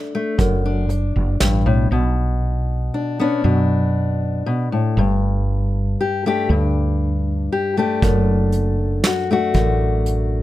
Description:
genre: acoustic folk duo or small band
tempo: 118 BPM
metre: 3/4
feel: straight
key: unclear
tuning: A4 = 440 Hz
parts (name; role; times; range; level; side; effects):
- fingerpicked steel-string acoustic guitar; accompaniment; 0.0-10.4 s; F#2 to G4; -20 LUFS; left 2 dB; none
- woody fretless electric bass; bass; 0.4-10.4 s; F#1 to F#2; -19 LUFS; right 1 dB; ensemble chorus
- soft brush drum kit; drums; 0.4-1.5, 8.0-10.2 s; hi-hat, kick drum, snare drum; -21 LUFS; right 1 dB; none
room: little or no reverb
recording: close, detailed microphones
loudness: -17 LUFS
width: side -15 dB against mid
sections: 0.0-1.9 A section; 1.9-10.4 B section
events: none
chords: 0.0 D/F#; 1.9 Bm; 5.0 Gsus2; 8.0 D/F#

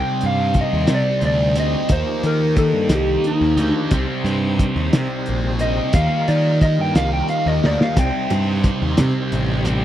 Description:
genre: psychedelic rock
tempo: 59 BPM (dotted quarters)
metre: 6/8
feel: straight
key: C minor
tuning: A4 = 440 Hz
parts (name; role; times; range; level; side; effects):
- electric slide guitar; melody; 0.0-9.0 s; Eb4 to G5; -22 LUFS; equal; tape echo
- tonewheel organ; sustained chords; 0.0-9.8 s; F3 to C5; -31 LUFS; right 4 dB; slow rotary speaker, overdrive, chorus vibrato
- thick fuzz guitar; riff; 0.0-9.8 s; C3 to Eb4; -22 LUFS; equal; distortion, phaser
- fuzz picked electric bass; bass; 0.2-9.8 s; A1 to Eb3; -21 LUFS; equal; overdrive
- cloth-damped thuddy drum kit; drums; 0.2-9.8 s; hi-hat, kick drum, snare drum; -18 LUFS; equal; none
- congas; percussion; 8.0-9.8 s; none; -29 LUFS; right 2 dB; none
room: light reverb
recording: dry, close 1970s-style studio recording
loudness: -16 LUFS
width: side -12 dB against mid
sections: 0.0-9.8 A section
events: electric slide guitar solo 0.0-9.8; drum fill 7.6-8.0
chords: 0.0 Cm; 1.9 Ebadd9; 3.9 Cm; 5.9 Ebadd9; 8.0 Cm

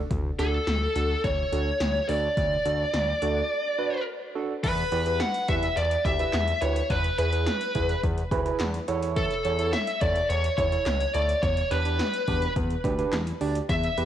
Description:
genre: synth-pop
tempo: 106 BPM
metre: 4/4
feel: straight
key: E dorian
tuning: A4 = 440 Hz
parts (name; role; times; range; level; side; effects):
- smooth synth bass; bass; 0.0-14.1 s; C#2 to E2; -28 LUFS; left 1 dB; none
- 80s electronic pad drums; drums; 0.1-14.1 s; crash cymbal, handclaps, hi-hat, kick drum, snare drum; -31 LUFS; left 1 dB; cassette tape
- high-gain lead guitar; melody; 0.4-14.1 s; A4 to F#5; -27 LUFS; equal; distortion, cassette tape, analog delay
- soft electric-piano-like synth keys; accompaniment; 0.4-14.1 s; D4 to D5; -32 LUFS; right 6 dB; chorus, cassette tape
room: light reverb, digital ambience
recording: home recording on cassette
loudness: -23 LUFS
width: side -10 dB against mid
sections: 0.0-4.6 A section; 4.6-14.1 B section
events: break 3.5-4.6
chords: 0.0 D; 4.6 Em; 6.9 E; 8.9 A/E; 11.4 G/E

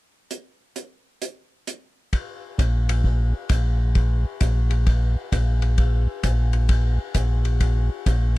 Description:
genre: soul jazz organ trio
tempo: 131 BPM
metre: 4/4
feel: swing 66% on 8ths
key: unclear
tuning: A4 = 440 Hz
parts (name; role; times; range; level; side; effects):
- warm soul drum kit; drums; 0.3-8.2 s; hi-hat, kick drum, ride cymbal; -25 LUFS; equal; none
- mellow tonewheel organ; bass; 2.6-8.4 s; Bb1; -19 LUFS; equal; overdrive, chorus vibrato, slow rotary speaker
room: little or no reverb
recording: dry, close 1970s-style studio recording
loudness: -19 LUFS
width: side -19 dB against mid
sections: 0.3-2.1 A section; 2.1-8.4 B section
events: none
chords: none

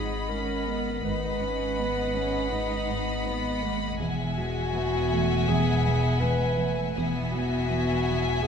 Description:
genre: cinematic, suspense film score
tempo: 81 BPM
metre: 4/4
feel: straight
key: unclear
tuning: A4 = 440 Hz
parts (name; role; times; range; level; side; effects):
- warm chamber violin section; melody; 0.0-8.5 s; G#5 to B5; -34 LUFS; left 5 dB; none
- mellow clarinet; second line; 0.0-8.5 s; F#4 to B4; -31 LUFS; left 1 dB; none
- warm chamber violin section; second line; 0.0-8.5 s; D#5 to F#5; -33 LUFS; left 4 dB; none
- dark chamber viola section; accompaniment; 0.0-8.5 s; G#3 to D#4; -34 LUFS; right 1 dB; none
- warm chamber cello section; riff; 0.0-8.5 s; E2 to G#3; -34 LUFS; right 1 dB; none
- dark chamber double bass section; bass; 0.0-8.5 s; E1 to G#1; -32 LUFS; right 2 dB; none
- warm chamber cello section; bass; 0.0-8.5 s; E2 to G#2; -34 LUFS; right 3 dB; none
- saturated sub bass; drone; 0.0-8.5 s; E1 to G#1; -36 LUFS; equal; none
room: wet recital hall reverb, RT60 1.2 s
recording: recorded in a church or concert hall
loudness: -24 LUFS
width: side -7 dB against mid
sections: 0.0-8.5 A section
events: none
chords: 0.0 G#m7; 4.0 Eadd9

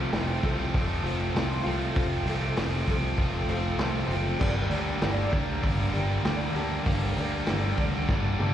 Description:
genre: classic rock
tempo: 98 BPM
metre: 4/4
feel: straight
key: G minor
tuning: A4 = 440 Hz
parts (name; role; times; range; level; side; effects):
- picked twelve-string acoustic guitar; accompaniment; 0.0-8.5 s; G2 to A4; -37 LUFS; right 1 dB; ensemble chorus, slapback echo
- warm grand piano; accompaniment; 0.0-8.5 s; F4 to A5; -38 LUFS; left 3 dB; slapback echo
- biting overdriven guitar; riff; 0.0-8.5 s; F2 to G3; -33 LUFS; left 11 dB; none
- tight distorted guitar; riff; 0.0-8.5 s; F2 to D4; -33 LUFS; right 10 dB; distortion, slapback echo
- growling fingered electric bass; bass; 0.0-8.5 s; F1 to D2; -30 LUFS; equal; overdrive
- vintage drum kit; drums; 0.1-8.5 s; crash cymbal, hi-hat, kick drum, snare drum, toms; -30 LUFS; equal; none
room: light reverb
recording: live gig heard through the venue's PA, cassette tape, recital hall reverb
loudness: -25 LUFS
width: side -10 dB against mid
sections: 0.0-8.5 A section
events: drum fill 8.1-8.5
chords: 0.0 F; 4.4 Gm

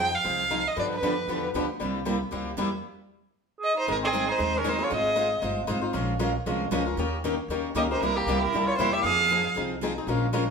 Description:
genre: acoustic string swing (jazz manouche)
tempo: 232 BPM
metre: 4/4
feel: swing 55% on 8ths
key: Ab major from 3.9 s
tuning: A4 = 445 Hz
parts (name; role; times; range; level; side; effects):
- warm violin; melody; 0.0-1.4, 3.6-5.4, 7.8-9.5 s; G4 to G5; -26 LUFS; right 2 dB; none
- picked steel-string acoustic guitar; accompaniment; 0.0-10.4 s; C3 to C5; -32 LUFS; right 3 dB; none
- picked swing-style acoustic guitar; accompaniment; 0.0-10.4 s; C3 to C5; -30 LUFS; left 5 dB; none
- upright bass; bass; 0.0-10.5 s; G1 to G2; -33 LUFS; equal; none
- mellow cor anglais; second line; 3.6-5.4, 7.8-9.5 s; Bb3 to Ab4; -29 LUFS; right 3 dB; none
room: wet large studio reverb, RT60 1.0 s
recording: band playing live in one room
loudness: -24 LUFS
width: side -5 dB against mid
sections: 0.0-3.9 A section; 3.9-10.5 B section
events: none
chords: 0.0 Fm7; 0.8 G7; 1.8 C7; 2.8 N.C.; 3.9 Ab; 4.9 Fm7/Ab; 5.9 Bbm7; 7.0 Eb7; 8.0 C7; 9.0 Fm7

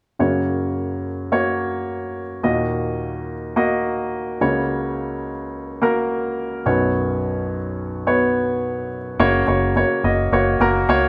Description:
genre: piano-driven pop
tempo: 107 BPM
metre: 4/4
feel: straight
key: F# major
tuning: A4 = 440 Hz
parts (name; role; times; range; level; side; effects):
- warm grand piano; accompaniment; 0.2-11.1 s; B1 to D#5; -21 LUFS; equal; none
- vintage muted fingered electric bass; bass; 9.2-11.1 s; F#1 to C#2; -25 LUFS; equal; none
room: wet large studio reverb, RT60 1.2 s, small room ambience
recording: none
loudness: -21 LUFS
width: mono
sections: 0.2-9.2 A section; 9.2-11.1 B section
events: none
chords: 0.2 F#; 2.4 D#m; 4.4 F#/C#; 6.7 Bsus2; 9.2 F#

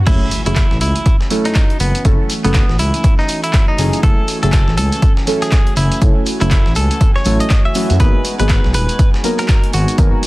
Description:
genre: deep house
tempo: 121 BPM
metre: 4/4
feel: swing 60% on 16ths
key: F# dorian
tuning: A4 = 439 Hz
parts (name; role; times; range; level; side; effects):
- swell and impact; sound effects; 0.0-2.0 s; none; -27 LUFS; equal; none
- direct-recorded clean electric guitar; melody; 0.1-10.0 s; B3 to E5; -22 LUFS; equal; vintage 12-bit sampler grit, analog delay
- warm analog pad; sustained chords; 0.1-10.3 s; E3 to G#5; -26 LUFS; right 1 dB; chorus, sidechain pumping
- deep mellow chord stab; stabs; 0.1-10.3 s; F#3 to A#4; -21 LUFS; right 1 dB; chorus, phaser, sidechain pumping
- smooth gliding synth bass; bass; 0.1-10.1 s; D#1 to F#2; -17 LUFS; equal; sidechain pumping
- breakbeat sampler-style drum kit; drums; 0.1-10.3 s; hi-hat, snare drum, tambourine; -30 LUFS; right 1 dB; sidechain pumping on perc, high-pass filter on perc, high-pass filter on snare, sidechain pumping on hats, high-pass filter on hats
- electronic kick drum; drums; 0.1-10.1 s; none; -13 LUFS; equal; none
- punchy analog drum machine; drums; 0.1-10.3 s; crash cymbal, handclaps, hi-hat; -23 LUFS; right 1 dB; none
- shekere; percussion; 0.1-10.3 s; none; -29 LUFS; left 3 dB; none
room: little or no reverb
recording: dense, heavily limited modern master, vinyl crackle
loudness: -12 LUFS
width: side -20 dB against mid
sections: 0.1-10.3 A section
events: drop 0.1-10.3; impact 0.1-2.0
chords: 0.1 F#m7; 8.0 G#m7

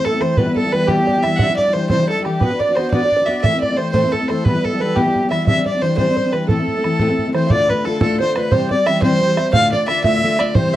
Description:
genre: celtic folk, Celtic jig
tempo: 118 BPM (dotted quarters)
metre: 6/8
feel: straight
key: A minor, D dorian from 7.5 s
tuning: A4 = 440 Hz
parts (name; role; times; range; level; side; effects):
- dark fiddle; melody; 0.0-10.8 s; G4 to F#5; -18 LUFS; equal; none
- accordion; second line; 0.0-10.8 s; G4 to F5; -26 LUFS; right 2 dB; light tremolo tuning
- open-back banjo; second line; 0.0-10.8 s; G4 to F5; -26 LUFS; right 7 dB; none
- fingerpicked steel-string acoustic guitar; accompaniment; 0.0-10.7 s; D2 to B4; -19 LUFS; left 2 dB; none
- bodhran; percussion; 0.1-10.8 s; none; -20 LUFS; right 1 dB; none
room: wet small room reverb, RT60 0.5 s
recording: dark, warm production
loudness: -14 LUFS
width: side -13 dB against mid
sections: 0.0-7.5 A section; 7.5-10.8 B section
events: none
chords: 0.4 Em/B; 1.4 Cadd9; 2.4 Bm; 3.4 Am; 4.5 Em/B; 5.5 Cadd9; 6.5 Am; 7.5 Dm; 8.5 C; 9.5 Dm

